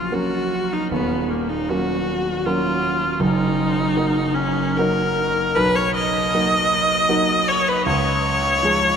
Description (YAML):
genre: classical, romantic duo for viola and grand piano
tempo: 78 BPM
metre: 3/4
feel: rubato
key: unclear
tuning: A4 = 438 Hz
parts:
  - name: clear viola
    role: melody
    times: 0.0-9.0 s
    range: A#3 to D#5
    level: -19 LUFS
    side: left 1 dB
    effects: none
  - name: clear concert grand piano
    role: accompaniment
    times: 0.0-9.0 s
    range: D#1 to G#4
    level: -22 LUFS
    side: right 2 dB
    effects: none
room: wet huge ambient reverb, RT60 7.0 s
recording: in a vast, echoing space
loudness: -17 LUFS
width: side -7 dB against mid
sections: 0.0-9.0 A section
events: none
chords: 0.0 F#/A#; 0.9 D#m7; 3.2 D#m/F#; 5.6 Bmaj7; 7.9 C#